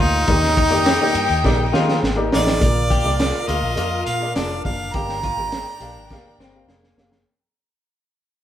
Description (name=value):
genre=uptempo 1960s-style soul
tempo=103 BPM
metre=4/4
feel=straight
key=unclear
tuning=A4 = 444 Hz
part: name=clear harmonica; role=melody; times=0.0-6.7 s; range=Eb4 to Bb5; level=-23 LUFS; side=right 2 dB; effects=tape echo
part: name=dark upright piano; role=accompaniment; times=0.0-7.2 s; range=G2 to F5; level=-26 LUFS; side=left 1 dB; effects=none
part: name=electric guitar through a small old amp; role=riff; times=0.0-7.2 s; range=Bb3 to G4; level=-26 LUFS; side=left 3 dB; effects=none
part: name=vintage muted fingered electric bass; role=bass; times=0.0-7.2 s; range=F1 to Eb3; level=-24 LUFS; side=equal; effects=none
part: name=warm studio string section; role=second line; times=0.3-7.2 s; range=D4 to G5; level=-28 LUFS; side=left 4 dB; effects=none
part: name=crunchy breakbeat drum kit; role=drums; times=0.3-7.3 s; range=hi-hat, kick drum, ride cymbal, snare drum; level=-22 LUFS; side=equal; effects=none
part: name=warm horn section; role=second line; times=2.6-6.9 s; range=D3 to D5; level=-40 LUFS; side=right 2 dB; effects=none
room=moderate studio reverb, RT60 0.5 s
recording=band playing live in one room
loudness=-17 LUFS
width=side -11 dB against mid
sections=0.0-2.6 A section; 2.6-7.3 B section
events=drum fill 1.4-2.6, 6.1-7.3; fade-out 2.6-7.3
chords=0.3 Ebmaj7; 2.6 Bb7